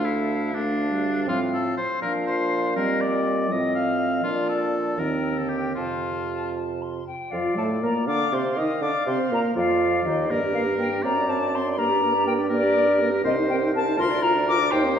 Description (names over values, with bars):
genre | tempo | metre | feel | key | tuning
quick classical-period movement for wind quintet | 81 BPM (dotted quarters) | 6/8 | straight | Bb major | A4 = 440 Hz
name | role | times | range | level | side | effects
silver concert flute | melody | 0.0-15.0 s | D5 to Eb6 | -26 LUFS | left 3 dB | none
clear oboe | second line | 0.0-15.0 s | D4 to F5 | -29 LUFS | left 2 dB | none
clear clarinet | accompaniment | 0.0-15.0 s | C4 to Eb5 | -29 LUFS | right 3 dB | none
dark French horn | accompaniment | 0.0-15.0 s | C3 to F4 | -28 LUFS | equal | none
mellow bassoon | bass | 0.0-15.0 s | C2 to Eb3 | -28 LUFS | right 2 dB | none
room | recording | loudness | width
wet recital hall reverb, RT60 1.6 s | heard from further back in the room | -21 LUFS | side -8 dB against mid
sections
0.0-7.3 A section; 7.3-15.0 B section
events
none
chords
0.0 Dm; 1.3 F/A; 2.0 Bb; 2.8 Cm7/Bb; 3.5 F7/A; 4.2 Bb; 5.0 Cm/Eb; 5.8 F; 7.3 Bb/F; 8.1 F5; 8.8 Bb; 10.3 Gm; 11.0 D7/F#; 11.8 Gm; 13.2 Cm7; 14.0 Bb/D